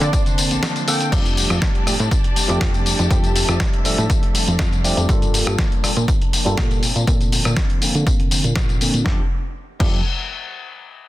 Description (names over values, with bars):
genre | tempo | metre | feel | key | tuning
filtered disco house | 121 BPM | 4/4 | straight | F major | A4 = 441 Hz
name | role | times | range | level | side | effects
analog synth brass | melody | 0.0-1.1 s | D5 to G5 | -30 LUFS | equal | chorus, sidechain pumping, low-pass filter, dub echo
tine electric piano | accompaniment | 0.0-10.0 s | D3 to A4 | -25 LUFS | right 1 dB | phaser, sidechain pumping, low-pass filter
bright studio string section | sustained chords | 0.0-5.1 s | D4 to A5 | -30 LUFS | left 1 dB | sidechain pumping, low-pass filter
clean electric guitar | riff | 0.0-10.0 s | F3 to A4 | -30 LUFS | left 2 dB | sidechain pumping, low-pass filter
plucky analog bass | bass | 0.0-10.0 s | Bb1 to D3 | -21 LUFS | equal | sidechain pumping, low-pass filter
dusty soul sampler-style drum kit | drums | 0.0-9.9 s | crash cymbal, hi-hat, rim click, snare drum, tambourine | -22 LUFS | left 1 dB | sidechain pumping on hats, sidechain pumping on perc, sidechain pumping on cymbals
electronic kick drum | drums | 0.1-9.9 s | none | -19 LUFS | equal | none
room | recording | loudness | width
little or no reverb | dense, heavily limited modern master | -16 LUFS | side -16 dB against mid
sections
0.0-1.1 A section; 1.1-9.1 B section; 9.1-11.0 C section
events
drop 0.0-1.1; filter sweep 1.1-9.1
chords
0.0 Bbmaj9; 1.1 F69; 5.1 Gm9; 6.8 Bbmaj9; 9.1 F69